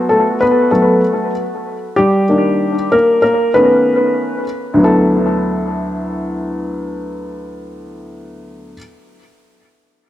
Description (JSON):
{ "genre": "hip hop", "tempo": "96 BPM", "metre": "4/4", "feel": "swing 63% on 16ths", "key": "unclear", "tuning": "A4 = 439 Hz", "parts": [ { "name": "dark upright piano", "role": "accompaniment", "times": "0.0-8.8 s", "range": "D2 to B4", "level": "-13 LUFS", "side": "left 1 dB", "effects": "analog delay" } ], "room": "moderate spring reverb, RT60 2.0 s, studio reverb", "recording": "echo-heavy mix", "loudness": "-12 LUFS", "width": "side -13 dB against mid", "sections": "0.0-4.8 A section; 4.8-7.3 B section", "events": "upright piano solo 0.0-4.8", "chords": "0.0 Gmaj7; 2.3 Ebmaj7; 3.5 B9; 4.8 D69" }